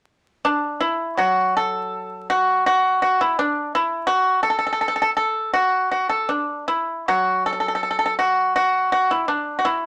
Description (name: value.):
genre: chinese traditional.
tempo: 76-86 BPM.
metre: 2/4.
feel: rubato.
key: unclear.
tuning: A4 = 442 Hz.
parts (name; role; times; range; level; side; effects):
pipa; solo; 0.4-9.9 s; F#3 to A4; -21 LUFS; equal; none.
room: moderate studio reverb, RT60 0.8 s.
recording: vinyl crackle.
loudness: -21 LUFS.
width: mono.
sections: 0.0-1.2 A section; 1.2-9.9 B section.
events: none.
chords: none.